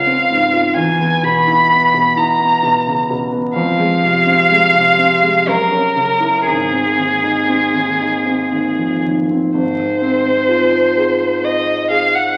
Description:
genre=classical, impressionist duo for violin and grand piano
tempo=57-65 BPM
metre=3/4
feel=rubato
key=Ab mixolydian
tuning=A4 = 438 Hz
part: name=rich violin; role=melody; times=0.0-12.4 s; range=Ab4 to B5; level=-16 LUFS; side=equal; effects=none
part: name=warm concert grand piano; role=accompaniment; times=0.0-12.4 s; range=Ab1 to C5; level=-20 LUFS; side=equal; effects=none
room=wet recital hall reverb, RT60 1.7 s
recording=very old 78 rpm record, vinyl crackle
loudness=-15 LUFS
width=mono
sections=0.0-9.6 A section; 9.6-12.4 A section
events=none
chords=0.0 Dbmaj7; 0.8 E5; 3.6 Fm; 5.5 Gb7; 6.5 Ab6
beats=| 0.78 1.71 2.64 | 3.57 4.51 5.47 | 6.47 7.50 8.54 | 9.56 10.51 11.45

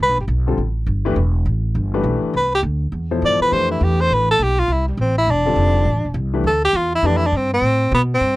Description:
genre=jazz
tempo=204 BPM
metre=4/4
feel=swing 62% on 8ths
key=unclear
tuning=A4 = 440 Hz
part: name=breathy tenor saxophone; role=melody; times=0.0-0.2, 2.4-8.4 s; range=G3 to D5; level=-17 LUFS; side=equal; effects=none
part: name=upright bass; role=bass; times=0.0-8.4 s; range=E1 to B2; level=-19 LUFS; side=equal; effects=none
part: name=warm grand piano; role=accompaniment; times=0.5-7.2 s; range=B2 to C5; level=-22 LUFS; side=left 4 dB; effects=none
room=little or no reverb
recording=dry, close 1970s-style studio recording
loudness=-16 LUFS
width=side -18 dB against mid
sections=0.0-8.2 A section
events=tenor saxophone solo 0.0-8.2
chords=0.0 Fmaj9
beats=0.28 0.57 0.87 | 1.16 1.46 1.75 2.05 | 2.34 2.63 2.93 3.22 | 3.52 3.81 4.10 4.40 | 4.69 4.98 5.28 5.57 | 5.86 6.16 6.45 6.75 | 7.04 7.33 7.63 7.92 | 8.21

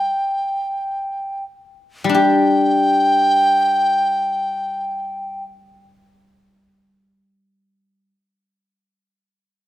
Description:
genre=chinese traditional, Chinese chamber ensemble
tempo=free time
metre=none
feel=none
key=unclear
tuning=A4 = 440 Hz
part: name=mellow large dizi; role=melody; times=0.0-5.4 s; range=G5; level=-17 LUFS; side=equal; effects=none
part: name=guzheng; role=accompaniment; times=0.0-8.1 s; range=G3 to G4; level=-18 LUFS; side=left 2 dB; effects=none
room=light reverb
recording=close, detailed microphones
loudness=-16 LUFS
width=side -14 dB against mid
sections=0.0-2.2 A section; 2.2-7.9 B section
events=slowing down 0.0-2.2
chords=none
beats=free time

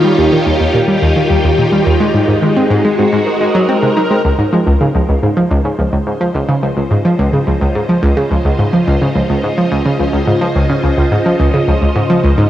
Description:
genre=ambient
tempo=107 BPM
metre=4/4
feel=straight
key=Ab major, Db major from 4.2 s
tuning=A4 = 441 Hz
part: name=phased string machine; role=sustained chords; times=0.0-12.5 s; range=Db3 to Eb5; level=-16 LUFS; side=equal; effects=ensemble chorus, phaser, cassette tape
part: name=analog pluck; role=riff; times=0.0-12.5 s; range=Db2 to Eb4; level=-12 LUFS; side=equal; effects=chorus, cassette tape, analog delay
part: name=bubbling stepped-filter texture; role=texture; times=5.5-12.5 s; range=Eb5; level=-29 LUFS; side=right 2 dB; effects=none
room=wet lush hall reverb, RT60 3.1 s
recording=home recording on cassette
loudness=-11 LUFS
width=side -12 dB against mid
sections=0.0-4.2 A section; 4.2-12.5 B section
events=fade-in on string machine 4.2-12.5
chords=0.0 Eb7; 2.0 Ab7; 4.2 Dbmaj7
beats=0.32 0.88 1.44 | 2.00 2.56 3.12 3.69 | 4.25 4.81 5.37 5.93 | 6.49 7.05 7.61 8.17 | 8.73 9.29 9.85 10.41 | 10.98 11.54 12.10

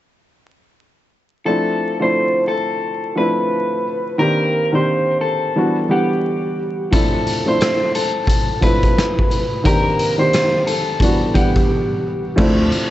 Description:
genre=hip hop, boom-bap hip-hop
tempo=88 BPM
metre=4/4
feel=swing 61% on 16ths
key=D dorian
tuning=A4 = 440 Hz
part: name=electric guitar at the edge of break-up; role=melody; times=1.5-12.3 s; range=G4 to C5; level=-20 LUFS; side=equal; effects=spring reverb, high-pass filter, low-pass filter, ping-pong delay
part: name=dark upright piano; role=accompaniment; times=1.5-12.9 s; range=Eb3 to F#5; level=-19 LUFS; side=equal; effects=cassette tape, high-pass filter, low-pass filter
part: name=raw garage drum kit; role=drums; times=6.9-12.9 s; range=crash cymbal, hi-hat, kick drum, rim click, snare drum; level=-18 LUFS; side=equal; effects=none
part: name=upright bass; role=bass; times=12.4-12.7 s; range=D2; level=-17 LUFS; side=equal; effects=none
room=moderate studio reverb, RT60 0.6 s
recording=worn, warbling old tape, cassette tape, vinyl crackle, warbly pitch drift, nothing above 8.0 kHz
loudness=-15 LUFS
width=side -14 dB against mid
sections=1.5-12.4 A section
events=break 11.7-12.4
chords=1.5 Dm7; 4.2 Cm7; 5.6 Em7; 6.9 Dm7; 9.7 Cm7; 11.0 Em7; 12.4 Dm7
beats=| 1.47 2.15 2.83 3.52 | 4.20 4.88 5.56 6.24 | 6.93 7.61 8.29 8.97 | 9.65 10.34 11.02 11.70 | 12.38

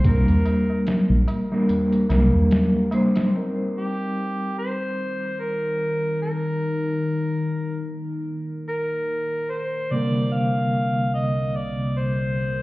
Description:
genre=trip hop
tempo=73 BPM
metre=4/4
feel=swing 57% on 16ths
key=C minor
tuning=A4 = 440 Hz
part: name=mellow harmonica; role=melody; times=0.0-12.6 s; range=G4 to F5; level=-27 LUFS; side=equal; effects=vintage 12-bit sampler grit, tape echo
part: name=mellow electric guitar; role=accompaniment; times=0.0-12.6 s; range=C3 to C5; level=-23 LUFS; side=equal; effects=tremolo, low-pass filter, tape echo
part: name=dark detuned saw bass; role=bass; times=0.0-2.3 s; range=Bb1 to C2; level=-19 LUFS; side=equal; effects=none
part: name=trip hop sampler-style drum kit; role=drums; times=0.0-3.3 s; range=hi-hat, kick drum, snare drum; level=-21 LUFS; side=equal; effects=overdrive
part: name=tabla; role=percussion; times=0.0-3.3 s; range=none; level=-25 LUFS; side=equal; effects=none
part: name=deep dark ambient pad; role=sustained chords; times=4.9-12.6 s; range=C3 to C5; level=-29 LUFS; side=left 2 dB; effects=chorus, built-in reverb
room=light reverb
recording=heard muffled through a wall, stone room reverb, EQ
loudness=-20 LUFS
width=side -19 dB against mid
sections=0.0-3.3 A section; 3.3-12.6 B section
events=filter sweep on clean electric guitar 0.0-3.3, 3.3-12.6; kick drops out 1.7-3.3; filter sweep on ambient pad 3.3-12.6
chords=0.0 Gm; 3.3 Cm7; 9.9 Gm/C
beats=| 0.04 0.86 1.69 2.51 | 3.33 4.15 4.97 5.79 | 6.62 7.44 8.26 9.08 | 9.90 10.73 11.55 12.37

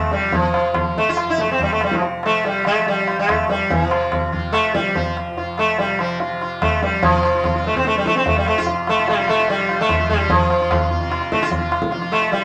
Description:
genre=indian classical, Hindustani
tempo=145 BPM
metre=4/4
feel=straight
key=F raga hamsadhwani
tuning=A4 = 435 Hz
part: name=sitar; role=melody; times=0.0-12.4 s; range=F3 to F4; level=-20 LUFS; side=equal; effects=none
part: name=tanpura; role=drone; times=0.0-12.4 s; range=F2 to F3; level=-31 LUFS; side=equal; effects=none
part: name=tabla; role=percussion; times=0.1-12.4 s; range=none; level=-24 LUFS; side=equal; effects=none
room=wet studio reverb, RT60 0.8 s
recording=none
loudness=-19 LUFS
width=mono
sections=0.0-7.0 A section; 7.0-12.4 B section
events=speeding up 0.0-12.4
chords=none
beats=| 0.33 0.76 1.18 1.60 | 2.02 2.45 2.87 3.29 | 3.71 4.12 4.54 4.96 | 5.37 5.79 6.20 6.62 | 7.03 7.44 7.85 8.26 | 8.67 9.08 9.49 9.90 | 10.31 10.71 11.12 11.52 | 11.93 12.33

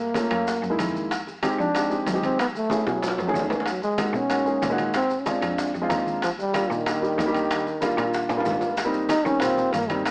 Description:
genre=Afro-Cuban jazz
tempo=188 BPM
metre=4/4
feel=straight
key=Eb major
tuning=A4 = 439 Hz
part: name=breathy trombone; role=melody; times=0.0-10.1 s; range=Eb3 to Eb4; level=-25 LUFS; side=equal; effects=none
part: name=rich cello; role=bass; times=0.0-10.1 s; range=Eb2 to Gb3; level=-32 LUFS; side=equal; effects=none
part: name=dark baby grand piano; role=accompaniment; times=0.1-10.1 s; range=G3 to Bb5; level=-26 LUFS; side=equal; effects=none
part: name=congas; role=percussion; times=0.1-10.1 s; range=none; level=-36 LUFS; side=equal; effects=none
part: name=bongos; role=percussion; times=0.2-10.1 s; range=none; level=-32 LUFS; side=left 1 dB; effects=none
part: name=maracas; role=percussion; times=0.2-10.1 s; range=none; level=-39 LUFS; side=equal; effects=none
part: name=timbales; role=percussion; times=0.2-10.1 s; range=none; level=-31 LUFS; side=right 1 dB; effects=none
room=moderate large studio reverb, RT60 1.2 s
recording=small speaker sound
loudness=-21 LUFS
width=side -27 dB against mid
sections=0.0-8.8 A section; 8.8-10.1 B section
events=drum fill 2.7-3.7, 8.3-8.8; grand piano fill 5.7-6.2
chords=0.5 Gb13; 1.1 Fm7; 2.4 Gbm9; 3.0 B13; 3.7 Emaj9#11; 4.9 Bb7; 6.2 Ebmaj9; 8.8 Abmaj9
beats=0.15 0.47 0.79 | 1.11 1.43 1.75 2.07 | 2.39 2.71 3.02 3.35 | 3.66 3.98 4.30 4.62 | 4.94 5.26 5.58 5.90 | 6.22 6.54 6.86 7.18 | 7.50 7.82 8.14 8.46 | 8.78 9.10 9.42 9.74 | 10.06

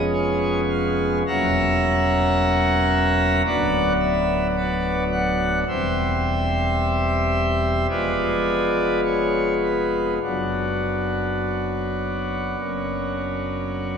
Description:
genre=classical, chorale-style piece for pipe organ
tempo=49-56 BPM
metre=4/4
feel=rubato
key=unclear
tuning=A4 = 440 Hz
part: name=pipe organ, principal chorus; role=solo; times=0.0-14.0 s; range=D1 to A#5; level=-19 LUFS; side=equal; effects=none
room=wet church reverb, RT60 3.4 s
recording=heard from further back in the room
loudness=-19 LUFS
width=side -6 dB against mid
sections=0.0-14.0 A section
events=none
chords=0.0 C#7/E#; 1.3 F#7/E; 3.5 Bm/D; 5.7 C/E; 7.9 Fdim7; 10.2 Bm/F#; 12.6 F#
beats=0.12 | 1.27 2.36 3.46 4.56 | 5.68 6.80 7.90 9.04 | 10.23 11.41 12.60 13.81

